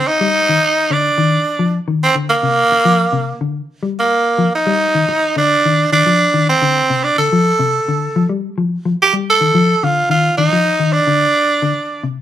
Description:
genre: afrobeat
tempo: 108 BPM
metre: 4/4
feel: straight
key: F mixolydian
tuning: A4 = 440 Hz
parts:
  - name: raspy tenor saxophone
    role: melody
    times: 0.0-12.0 s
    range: Bb3 to A4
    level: -13 LUFS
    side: right 2 dB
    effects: none
  - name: mellow electric guitar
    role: arpeggios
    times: 0.0-12.2 s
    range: C3 to G3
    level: -17 LUFS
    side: left 4 dB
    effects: none
room: moderate large studio reverb, RT60 0.9 s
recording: band playing live in one room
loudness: -12 LUFS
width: side -11 dB against mid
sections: 0.1-12.2 A section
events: none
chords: 0.1 Fsus2; 2.3 Bb; 4.5 Fsus2; 6.8 F69/C; 9.0 F13; 11.2 Csus2

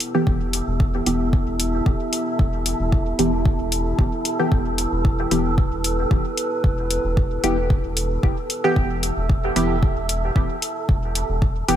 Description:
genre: dub techno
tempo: 113 BPM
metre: 4/4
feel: swing 54% on 16ths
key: E minor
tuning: A4 = 440 Hz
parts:
  - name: dark analog pad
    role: sustained chords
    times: 0.0-11.8 s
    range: B3 to E5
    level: -28 LUFS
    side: right 1 dB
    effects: lush chorus, sidechain pumping
  - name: electronic hi-hat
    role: drums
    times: 0.0-11.8 s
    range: none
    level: -24 LUFS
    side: left 2 dB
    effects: none
  - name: wind-like tuned noise texture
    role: texture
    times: 0.0-11.8 s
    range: A4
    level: -30 LUFS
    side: right 2 dB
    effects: built-in reverb, sidechain pumping
  - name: filtered dub chord stab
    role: stabs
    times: 0.1-11.8 s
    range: E3 to G4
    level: -24 LUFS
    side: equal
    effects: chorus, phaser, sidechain pumping, dub echo
  - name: round analog bass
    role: bass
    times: 0.3-11.8 s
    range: E1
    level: -26 LUFS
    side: equal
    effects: sidechain pumping
  - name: electronic kick drum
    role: drums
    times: 0.3-11.5 s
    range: none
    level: -20 LUFS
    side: equal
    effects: none
room: light reverb, digital ambience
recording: none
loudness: -19 LUFS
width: side -10 dB against mid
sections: 0.0-11.8 A section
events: none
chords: 0.0 Em

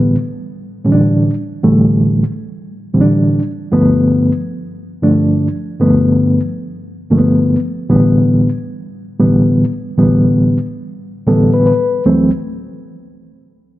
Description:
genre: funk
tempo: 115 BPM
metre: 4/4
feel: straight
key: unclear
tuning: A4 = 440 Hz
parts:
  - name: mellow reed electric piano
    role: stabs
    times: 0.0-12.3 s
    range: D2 to B4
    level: -12 LUFS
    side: equal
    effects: medium tremolo, slapback echo
room: moderate echo chamber reverb, RT60 2.5 s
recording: none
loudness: -11 LUFS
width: side -16 dB against mid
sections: 0.0-12.1 A section; 12.1-13.8 B section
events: reed electric piano fill 11.0-12.1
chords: 0.0 A7sus4; 3.7 G9; 7.9 A9sus4; 12.1 D9

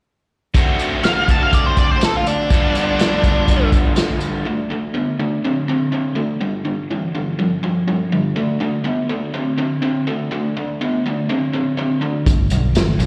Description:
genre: blues rock power trio and southern rock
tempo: 123 BPM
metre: 4/4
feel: straight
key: unclear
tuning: A4 = 440 Hz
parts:
  - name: raw garage guitar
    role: riff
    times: 0.5-13.1 s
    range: G2 to F#4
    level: -21 LUFS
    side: equal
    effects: overdrive
  - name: vintage drum kit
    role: drums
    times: 0.5-4.3, 12.3-13.1 s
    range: hi-hat, kick drum, snare drum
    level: -19 LUFS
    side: equal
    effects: none
  - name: octave-fuzz lead guitar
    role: melody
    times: 1.0-3.7 s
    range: D4 to A5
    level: -22 LUFS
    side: equal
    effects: distortion, slapback echo, tape echo
  - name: vintage muted picked electric bass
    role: bass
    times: 12.3-13.1 s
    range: G1 to B1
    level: -19 LUFS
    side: equal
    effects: none
room: light reverb, studio reverb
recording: live gig heard through the venue's PA, recital hall reverb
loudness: -19 LUFS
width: mono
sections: 0.6-4.5 A section; 4.5-13.1 B section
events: none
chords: 0.6 D7; 2.5 G7; 4.5 D5; 6.4 G5; 8.4 D5; 12.3 G

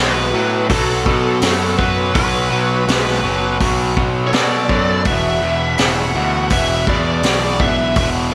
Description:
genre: blues rock power trio and southern rock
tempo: 83 BPM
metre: 4/4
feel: straight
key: unclear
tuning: A4 = 439 Hz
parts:
  - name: bluesy overdriven lead guitar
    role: melody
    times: 0.0-8.1 s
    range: A4 to F#5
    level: -23 LUFS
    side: equal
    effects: distortion, slapback echo
  - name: bluesy overdriven lead guitar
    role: second line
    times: 0.0-8.1 s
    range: F#4 to E5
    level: -29 LUFS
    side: equal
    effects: distortion, slapback echo
  - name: distorted electric guitar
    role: riff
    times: 0.0-8.3 s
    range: E2 to G#3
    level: -22 LUFS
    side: equal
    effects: distortion
  - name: growling picked electric bass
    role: bass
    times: 0.0-8.3 s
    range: E1 to B2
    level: -23 LUFS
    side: equal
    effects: overdrive
  - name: vintage drum kit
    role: drums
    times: 0.7-8.1 s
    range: hi-hat, kick drum, snare drum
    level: -22 LUFS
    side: equal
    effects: none
room: moderate lush hall reverb, RT60 1.6 s, studio reverb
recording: big arena sound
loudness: -16 LUFS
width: mono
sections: 0.0-8.3 A section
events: none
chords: 0.0 B5; 5.1 E7(no3)

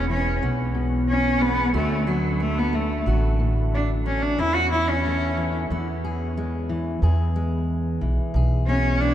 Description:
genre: acoustic folk duo or small band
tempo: 91 BPM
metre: 4/4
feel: straight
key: unclear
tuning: A4 = 440 Hz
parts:
  - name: clear cello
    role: melody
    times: 0.0-9.1 s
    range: F#3 to F#4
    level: -24 LUFS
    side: equal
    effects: none
  - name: fingerpicked steel-string acoustic guitar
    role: accompaniment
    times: 0.0-9.1 s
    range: E2 to G#4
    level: -27 LUFS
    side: left 2 dB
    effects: none
  - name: upright bass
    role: bass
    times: 0.0-9.1 s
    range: E1 to E2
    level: -24 LUFS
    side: equal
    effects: none
room: moderate cathedral reverb, RT60 5.9 s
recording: in a vast, echoing space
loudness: -20 LUFS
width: side -11 dB against mid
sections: 0.0-7.0 A section; 7.0-9.1 B section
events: cello solo 0.0-7.0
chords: 0.0 E; 1.7 D; 4.4 A/E; 5.7 E

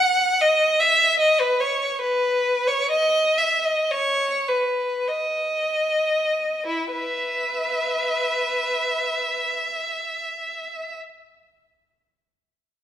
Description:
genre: classical, free, expressive piece for unaccompanied violin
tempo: 31-83 BPM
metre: 3/4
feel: rubato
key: unclear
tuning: A4 = 440 Hz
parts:
  - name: rich violin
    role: solo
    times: 0.0-11.0 s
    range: E4 to F#5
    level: -20 LUFS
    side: equal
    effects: none
room: moderate recital hall reverb, RT60 1.6 s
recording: none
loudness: -20 LUFS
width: side -10 dB against mid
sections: 0.0-6.6 A section; 6.6-10.6 B section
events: slowing down 0.0-6.6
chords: none

